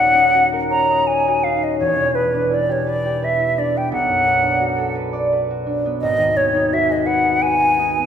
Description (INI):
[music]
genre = classical, impressionist duo for flute and harp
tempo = 57 BPM (dotted quarters)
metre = 6/8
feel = rubato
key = unclear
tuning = A4 = 440 Hz
[part]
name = hollow concert flute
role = melody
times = 0.0-8.1 s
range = B4 to A#5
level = -16 LUFS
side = equal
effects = none
[part]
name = concert harp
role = accompaniment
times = 0.0-8.1 s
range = D#1 to D#5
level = -21 LUFS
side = left 1 dB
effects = none
[sound]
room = wet concert hall reverb, RT60 2.0 s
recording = minimal, uncompressed stereo recording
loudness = -15 LUFS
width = side -8 dB against mid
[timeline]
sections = 0.0-8.1 A section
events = none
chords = 0.0 D#m7; 1.8 Em7; 3.9 Bm7; 6.0 G#m7